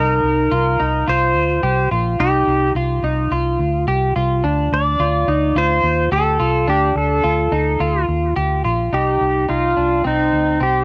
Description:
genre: dream pop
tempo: 107 BPM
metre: 4/4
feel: straight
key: C dorian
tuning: A4 = 435 Hz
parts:
  - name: pedal steel guitar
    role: melody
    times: 0.0-10.8 s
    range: Eb4 to D5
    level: -20 LUFS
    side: equal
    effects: cassette tape
  - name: semi-hollow electric guitar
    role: arpeggios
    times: 0.0-10.8 s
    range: C4 to G4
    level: -23 LUFS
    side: equal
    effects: analog chorus, cassette tape, analog delay
  - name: vintage muted fingered electric bass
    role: bass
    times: 0.0-10.8 s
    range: Bb1 to Eb2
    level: -23 LUFS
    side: equal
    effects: none
room: light reverb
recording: home recording on cassette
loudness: -18 LUFS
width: mono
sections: 0.0-8.9 A section; 8.9-10.8 B section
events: none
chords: 0.0 Cm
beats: 0.51 1.07 1.63 | 2.19 2.76 3.32 3.88 | 4.44 5.00 5.56 6.12 | 6.68 7.24 7.80 8.36 | 8.92 9.48 10.04 10.61

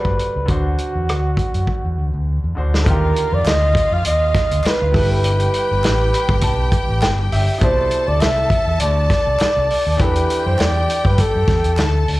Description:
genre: lush 1970s-style soul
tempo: 101 BPM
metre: 4/4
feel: swing 54% on 16ths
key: G major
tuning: A4 = 439 Hz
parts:
  - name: mellow flugelhorn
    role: melody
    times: 0.0-12.1 s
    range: F#4 to F5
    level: -20 LUFS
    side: right 1 dB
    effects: slapback echo
  - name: bright grand piano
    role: accompaniment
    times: 0.0-12.2 s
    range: B2 to B5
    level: -28 LUFS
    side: left 2 dB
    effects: slapback echo
  - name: overdriven fingered electric bass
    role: bass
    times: 0.1-12.2 s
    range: G1 to G2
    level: -19 LUFS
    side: equal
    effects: none
  - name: warm soul drum kit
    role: drums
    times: 0.1-12.2 s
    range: hi-hat, kick drum, rim click, snare drum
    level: -20 LUFS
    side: equal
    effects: none
  - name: warm studio violin section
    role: second line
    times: 2.9-12.2 s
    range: F4 to A5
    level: -26 LUFS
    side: equal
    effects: slapback echo
  - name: group handclap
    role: percussion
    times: 3.5-11.9 s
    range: none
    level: -36 LUFS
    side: equal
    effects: none
room: little or no reverb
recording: live gig heard through the venue's PA, club reverb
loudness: -15 LUFS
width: side -18 dB against mid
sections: 0.0-2.9 A section; 2.9-12.2 B section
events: drum fill 1.7-2.9; grand piano fill 5.8-7.6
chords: 0.5 D7; 2.9 Ebmaj9; 4.9 G69; 7.6 Cmaj9; 10.0 Em11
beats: | 0.49 1.08 1.68 2.27 | 2.87 3.46 4.05 4.65 | 5.24 5.84 6.43 7.03 | 7.62 8.21 8.81 9.40 | 10.00 10.59 11.19 11.78

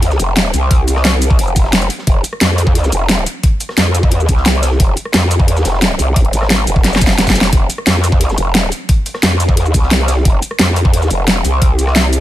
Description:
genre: dark technical drum and bass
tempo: 176 BPM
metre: 4/4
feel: straight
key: F minor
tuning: A4 = 441 Hz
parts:
  - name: growl bass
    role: bass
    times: 0.0-12.2 s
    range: F1 to F2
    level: -14 LUFS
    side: equal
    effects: chorus, overdrive, sidechain pumping
  - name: crunchy breakbeat drum kit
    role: drums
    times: 0.0-12.2 s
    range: hi-hat, snare drum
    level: -28 LUFS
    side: equal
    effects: none
  - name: dubstep drum kit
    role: drums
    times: 0.0-12.2 s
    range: hi-hat, rim click, shaker, snare drum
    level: -15 LUFS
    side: equal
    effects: overdrive, studio reverb
  - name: electronic kick drum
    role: drums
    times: 0.7-11.7 s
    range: none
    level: -13 LUFS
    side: equal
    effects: studio reverb
room: little or no reverb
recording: none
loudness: -11 LUFS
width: side -14 dB against mid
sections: 0.0-12.2 A section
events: drum fill 6.8-7.5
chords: none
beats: 0.03 0.37 | 0.71 1.05 1.39 1.73 | 2.07 2.41 2.75 3.09 | 3.44 3.78 4.12 4.46 | 4.80 5.14 5.48 5.82 | 6.16 6.50 6.84 7.18 | 7.53 7.87 8.21 8.55 | 8.89 9.23 9.57 9.91 | 10.25 10.59 10.94 11.28 | 11.62 11.96

